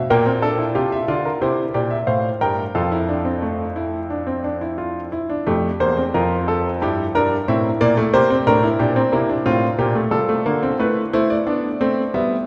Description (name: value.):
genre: classical, baroque-style 4-part fugue for grand piano.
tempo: 90 BPM.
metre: 4/4.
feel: straight.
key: F major.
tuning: A4 = 440 Hz.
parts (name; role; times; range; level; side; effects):
clear grand piano; solo; 0.0-12.3 s; E2 to G5; -20 LUFS; equal; none.
room: wet church reverb, RT60 3.4 s.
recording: recorded in a church or concert hall, nothing above 10.7 kHz.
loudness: -20 LUFS.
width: mono.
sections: 0.0-5.5 A section; 5.5-10.8 B section; 10.8-12.5 C section.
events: none.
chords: 0.1 Gm7/Bb; 1.4 C7; 2.8 F; 6.8 Edim/G; 8.1 C7; 9.5 F/A; 10.8 Am.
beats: | 0.10 0.76 1.42 2.08 | 2.75 3.43 4.11 4.79 | 5.47 6.14 6.81 7.48 | 8.14 8.79 9.45 10.12 | 10.79 11.47 12.14.